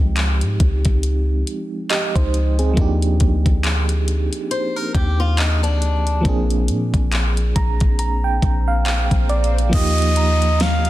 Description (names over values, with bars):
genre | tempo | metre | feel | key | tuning
contemporary R&B | 69 BPM | 4/4 | swing 58% on 16ths | Eb major | A4 = 439 Hz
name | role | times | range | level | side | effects
FM electric piano with tremolo | accompaniment | 0.0-10.9 s | F3 to Bb5 | -23 LUFS | right 3 dB | none
soft 808-style bass | bass | 0.0-10.9 s | Bb1 to Bb2 | -18 LUFS | equal | none
smooth R&B drum kit | drums | 0.2-10.9 s | crash cymbal, handclaps, hi-hat, kick drum, snare drum | -20 LUFS | equal | vintage 12-bit sampler grit
swell and downlifter | sound effects | 8.0-10.9 s | none | -30 LUFS | equal | none
picked swing-style acoustic guitar | arpeggios | 4.5-6.2 s | D4 to C5 | -24 LUFS | left 4 dB | digital delay
breathy alto saxophone | melody | 9.7-10.9 s | Eb5 to F5 | -20 LUFS | right 2 dB | digital delay
glassy synth bell | texture | 10.2-10.9 s | Bb5 | -32 LUFS | left 2 dB | chorus, digital delay
room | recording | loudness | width
little or no reverb | dense, heavily limited modern master | -16 LUFS | side -15 dB against mid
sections
0.0-9.7 A section; 9.7-10.9 B section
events
FM electric piano fill 7.1-9.7; swell 8.0-9.7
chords
0.0 Dbmaj9#11; 2.8 Ebmaj7; 6.2 Bb7; 9.7 Ebadd9